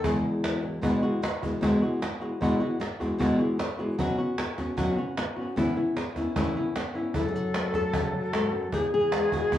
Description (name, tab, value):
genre	flamenco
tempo	152 BPM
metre	4/4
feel	straight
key	E major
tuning	A4 = 440 Hz
part	flamenco guitar	melody	0.0-9.6 s	E2 to A4	-26 LUFS	left 1 dB	plate reverb
part	cajon	percussion	0.0-9.6 s	none	-32 LUFS	right 1 dB	none
part	bright reedy wooden flute	second line	7.1-9.6 s	G#4 to A4	-29 LUFS	left 3 dB	slapback echo
room	moderate studio reverb, RT60 0.5 s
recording	worn, warbling old tape, cassette tape, warbly pitch drift, small room reverb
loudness	-25 LUFS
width	side -12 dB against mid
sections	0.8-7.2 A section; 7.2-9.6 B section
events	none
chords	0.0 Eadd9; 4.0 Bsus2; 5.6 Aadd9; 7.2 F#m; 8.7 Eadd9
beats	0.05 0.44 | 0.84 1.23 1.63 2.02 | 2.42 2.81 3.21 3.60 | 4.00 4.39 4.78 5.18 | 5.57 5.97 6.36 6.76 | 7.15 7.54 7.94 8.33 | 8.73 9.12 9.51